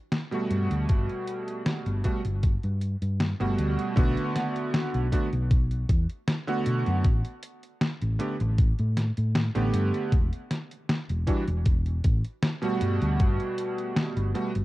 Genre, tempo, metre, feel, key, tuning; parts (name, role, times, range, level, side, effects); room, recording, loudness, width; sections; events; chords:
vaporwave; 78 BPM; 4/4; straight; G major; A4 = 440 Hz
detuned 8-bit digital drum machine; drums; 0.1-14.6 s; hi-hat, snare drum; -29 LUFS; equal
bright electric grand piano; accompaniment; 0.3-14.5 s; B2 to G4; -29 LUFS; right 2 dB; analog chorus, vintage 12-bit sampler grit, tape echo
hollow-body short-scale fingered electric bass; bass; 0.5-14.6 s; E1 to B2; -26 LUFS; equal; tube saturation
electronic kick drum; drums; 0.9-13.4 s; -23 LUFS; equal
little or no reverb; dark, warm production, cassette tape; -24 LUFS; side -17 dB against mid
0.0-4.0 A section; 4.0-14.6 B section
0.0 Emadd9 (rootless); 0.5 Gmaj9; 4.0 Bm7; 7.0 A9sus4; 10.1 Emadd9; 12.8 Gmaj9